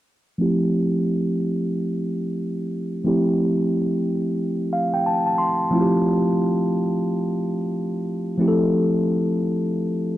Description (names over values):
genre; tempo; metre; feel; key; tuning
R&B; 90 BPM; 4/4; swing 60% on 16ths; F major; A4 = 440 Hz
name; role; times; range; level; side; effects
mellow tine electric piano; accompaniment; 0.4-10.2 s; F3 to C6; -20 LUFS; equal; low-pass filter
room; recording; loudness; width
moderate plate reverb, RT60 3.0 s; dark, warm production; -20 LUFS; side -14 dB against mid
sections
0.4-10.2 A section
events
filter sweep on tine electric piano 0.4-10.2; tine electric piano fill 4.4-5.7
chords
0.4 Fmaj9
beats
| 0.38 1.05 1.71 2.38 | 3.05 3.71 4.38 5.05 | 5.71 6.38 7.05 7.71 | 8.38 9.05 9.71